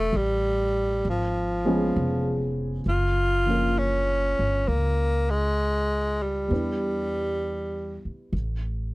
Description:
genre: jazz ballad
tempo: 66 BPM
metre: 4/4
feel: swing 68% on 8ths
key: unclear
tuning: A4 = 440 Hz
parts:
  - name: growling tenor saxophone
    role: melody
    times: 0.0-8.0 s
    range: E#3 to E#4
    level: -25 LUFS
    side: equal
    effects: none
  - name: upright bass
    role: bass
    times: 0.0-8.9 s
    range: E1 to E2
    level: -27 LUFS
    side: equal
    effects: none
  - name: dark baby grand piano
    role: accompaniment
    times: 1.7-8.4 s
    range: E#3 to B4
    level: -29 LUFS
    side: equal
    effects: none
room: little or no reverb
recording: dry, close 1970s-style studio recording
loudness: -23 LUFS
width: side -20 dB against mid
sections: 0.0-2.9 A section; 2.9-8.9 B section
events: none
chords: 0.0 Emadd11 (rootless); 1.0 C#7; 2.9 F#maj7; 6.5 Em7; 8.3 N.C.

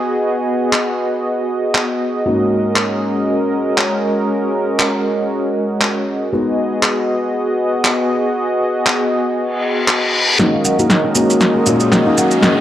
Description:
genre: afro house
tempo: 118 BPM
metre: 4/4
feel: swing 57% on 16ths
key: G# minor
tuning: A4 = 441 Hz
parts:
  - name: warm analog pad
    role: sustained chords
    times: 0.0-12.6 s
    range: G#3 to D#5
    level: -17 LUFS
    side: equal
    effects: chorus, tremolo
  - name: felt-muted upright piano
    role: stabs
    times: 0.0-12.5 s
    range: G#2 to F#4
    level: -20 LUFS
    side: left 2 dB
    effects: low-pass filter, tape echo
  - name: electronic handclaps and snare drum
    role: drums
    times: 0.7-12.5 s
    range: none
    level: -17 LUFS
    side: equal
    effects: overdrive
  - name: reverse cymbal and riser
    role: sound effects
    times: 9.6-12.6 s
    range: none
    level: -20 LUFS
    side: left 2 dB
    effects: none
  - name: kora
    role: arpeggios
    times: 10.4-12.6 s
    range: A#2 to D#4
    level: -20 LUFS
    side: right 1 dB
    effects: low-pass filter, tape echo
  - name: maracas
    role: percussion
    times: 10.4-12.5 s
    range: none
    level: -21 LUFS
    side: right 2 dB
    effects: none
room: light reverb, small room ambience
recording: dry, gritty hardware recording, cassette tape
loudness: -14 LUFS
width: side -12 dB against mid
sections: 0.0-10.4 A section; 10.4-12.6 B section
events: filter sweep on felt piano 0.0-10.4, 10.4-12.6; reverse cymbal 9.6-10.4; build-up 10.4-12.6; drum fill 10.4-12.6; riser 10.4-12.6; filter sweep on kora 10.4-12.6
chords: 0.0 G#m7; 2.3 D#m7/G#; 6.3 G#m7; 10.4 D#m7

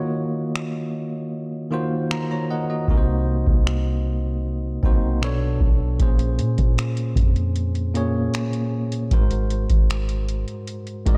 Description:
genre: contemporary R&B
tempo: 77 BPM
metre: 4/4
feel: straight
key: Bb minor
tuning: A4 = 440 Hz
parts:
  - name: bell-like tine electric piano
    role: accompaniment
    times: 0.0-11.2 s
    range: Ab2 to Bb5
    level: -27 LUFS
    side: equal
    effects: none
  - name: booming analog drum machine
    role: drums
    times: 0.6-11.2 s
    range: finger snaps, hi-hat, kick drum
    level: -23 LUFS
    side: equal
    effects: none
  - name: soft 808-style bass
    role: bass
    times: 2.9-11.2 s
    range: Ab1 to Bb2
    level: -26 LUFS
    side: equal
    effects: none
room: light reverb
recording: dark, warm production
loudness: -22 LUFS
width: mono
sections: 0.0-11.2 A section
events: break 0.0-2.9; tine electric piano fill 1.7-2.9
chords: 0.0 Ebm7; 2.9 Cm7b5; 5.2 Bm7; 6.0 Bbm7; 9.1 Ab7

